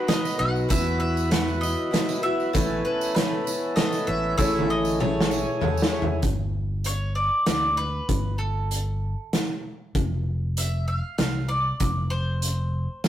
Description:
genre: folk rock and heartland rock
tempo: 97 BPM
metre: 3/4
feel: straight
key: A lydian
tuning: A4 = 441 Hz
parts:
  - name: bowl-back mandolin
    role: melody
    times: 0.0-13.1 s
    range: A4 to F#5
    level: -28 LUFS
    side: equal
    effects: none
  - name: picked twelve-string acoustic guitar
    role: accompaniment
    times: 0.0-6.2 s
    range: E3 to C#5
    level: -27 LUFS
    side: left 1 dB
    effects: none
  - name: overdriven tonewheel organ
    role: sustained chords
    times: 0.0-6.2 s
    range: E3 to B4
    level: -34 LUFS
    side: right 2 dB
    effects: slow rotary speaker
  - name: loose indie drum kit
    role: drums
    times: 0.1-13.1 s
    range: hi-hat, kick drum, snare drum, toms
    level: -26 LUFS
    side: equal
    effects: none
  - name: tambourine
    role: percussion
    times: 0.1-5.9 s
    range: none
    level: -38 LUFS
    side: right 5 dB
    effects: none
  - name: fingered electric bass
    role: bass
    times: 0.4-12.9 s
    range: F1 to E2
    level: -27 LUFS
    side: equal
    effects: none
room: moderate stone room reverb, RT60 1.0 s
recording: rough rehearsal-room recording, warm saturation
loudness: -22 LUFS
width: side -12 dB against mid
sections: 0.0-6.2 A section; 6.2-13.1 B section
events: drum fill 4.4-6.2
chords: 0.0 B; 0.7 Esus2; 2.5 Aadd9; 4.4 Amaj7; 6.2 Gsus2; 9.9 F5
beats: 0.08 | 0.69 1.31 1.92 | 2.54 3.15 3.77 | 4.38 5.00 5.61 | 6.23 6.85 7.47 | 8.08 8.70 9.32 | 9.94 10.56 11.18 | 11.80 12.42 13.04

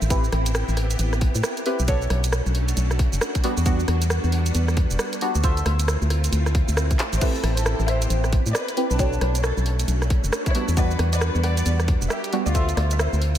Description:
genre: UK garage, two-step garage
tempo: 135 BPM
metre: 4/4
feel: swing 62% on 16ths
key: A minor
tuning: A4 = 441 Hz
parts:
  - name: soft string machine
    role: sustained chords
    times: 0.0-13.4 s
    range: G3 to G4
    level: -31 LUFS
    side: equal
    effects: ensemble chorus, sidechain pumping
  - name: organ-like FM bass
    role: bass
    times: 0.0-13.4 s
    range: E1 to A2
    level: -22 LUFS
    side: equal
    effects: none
  - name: garage drum kit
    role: drums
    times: 0.0-13.4 s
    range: crash cymbal, handclaps, hi-hat, rim click, shaker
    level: -28 LUFS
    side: right 1 dB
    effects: none
  - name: deep mellow chord stab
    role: stabs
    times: 0.1-12.7 s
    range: G3 to E5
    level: -28 LUFS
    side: right 1 dB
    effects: chorus, phaser, vintage 12-bit sampler grit, tape echo
  - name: electronic kick drum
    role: drums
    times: 0.1-12.7 s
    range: none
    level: -22 LUFS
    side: equal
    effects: none
  - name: dark chamber violin section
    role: melody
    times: 7.2-13.2 s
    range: D4 to F#5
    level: -30 LUFS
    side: left 1 dB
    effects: ping-pong delay
room: light reverb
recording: none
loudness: -20 LUFS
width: side -11 dB against mid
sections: 0.0-13.4 A section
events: drum fill 7.0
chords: 0.1 Am9; 1.9 Bm9; 3.4 Em9; 5.4 Dm9; 7.2 Am9; 9.0 Bm9; 10.5 Em9; 12.5 Dm9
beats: | 0.10 0.55 0.99 1.44 | 1.88 2.33 2.77 3.21 | 3.66 4.10 4.55 4.99 | 5.44 5.88 6.33 6.77 | 7.21 7.66 8.10 8.55 | 8.99 9.44 9.88 10.33 | 10.77 11.21 11.66 12.10 | 12.55 12.99

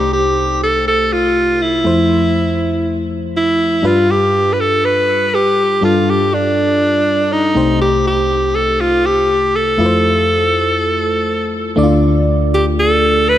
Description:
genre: pop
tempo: 121 BPM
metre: 4/4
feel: straight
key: G mixolydian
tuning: A4 = 441 Hz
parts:
  - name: bright alto saxophone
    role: melody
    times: 0.0-13.4 s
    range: D4 to B4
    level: -14 LUFS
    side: equal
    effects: ping-pong delay
  - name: FM electric piano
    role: accompaniment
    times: 0.0-13.4 s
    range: C2 to D5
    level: -16 LUFS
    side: left 1 dB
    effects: chorus
room: moderate lush hall reverb, RT60 3.2 s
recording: none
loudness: -12 LUFS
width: side -12 dB against mid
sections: 0.0-11.8 A section; 11.8-13.4 B section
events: none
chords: 0.0 Cm6; 1.9 Fmaj7; 3.8 G7; 7.6 Cm6; 9.8 Fmaj7; 11.8 Dm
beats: 0.37 0.87 1.36 | 1.86 2.35 2.85 3.35 | 3.84 4.34 4.83 5.33 | 5.83 6.32 6.82 7.31 | 7.81 8.30 8.80 9.30 | 9.79 10.29 10.78 11.28 | 11.78 12.27 12.77 13.26

